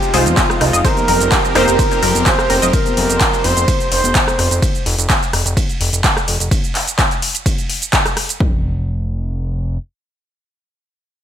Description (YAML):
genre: progressive house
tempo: 127 BPM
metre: 4/4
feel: straight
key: unclear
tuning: A4 = 439 Hz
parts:
  - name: expressive synth lead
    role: melody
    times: 0.0-4.5 s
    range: F4 to C5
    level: -19 LUFS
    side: right 1 dB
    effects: chorus, sidechain pumping, ping-pong delay
  - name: supersaw pad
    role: sustained chords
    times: 0.0-4.6 s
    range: F3 to C5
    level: -23 LUFS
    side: right 2 dB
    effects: sidechain pumping
  - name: wide unison pluck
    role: stabs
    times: 0.0-2.7 s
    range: Ab3 to C5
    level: -20 LUFS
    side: left 1 dB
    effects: cassette tape, sidechain pumping, ping-pong delay
  - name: deep house drum kit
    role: drums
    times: 0.0-8.4 s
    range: handclaps, hi-hat, ride cymbal, rim click, shaker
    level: -18 LUFS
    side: equal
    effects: overdrive, small room reverb
  - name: tight sequenced synth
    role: arpeggios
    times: 0.1-2.7 s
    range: Eb4 to Eb5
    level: -22 LUFS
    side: left 1 dB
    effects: chorus, sidechain pumping, ping-pong delay
  - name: fat analog bass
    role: bass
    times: 0.1-9.8 s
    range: F1 to F2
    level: -19 LUFS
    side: equal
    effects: sidechain pumping
  - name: congas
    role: percussion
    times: 0.3-4.1 s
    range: none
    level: -26 LUFS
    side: left 2 dB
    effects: sidechain pumping on perc
  - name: electronic kick drum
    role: drums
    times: 0.4-8.5 s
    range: none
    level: -18 LUFS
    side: equal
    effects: overdrive, small room reverb
room: light reverb, digital ambience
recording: none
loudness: -13 LUFS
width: side -10 dB against mid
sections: 0.0-8.4 A section; 8.4-11.2 B section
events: drop 0.0-8.4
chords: 0.0 Fm7; 0.8 Cm7/F; 8.4 N.C.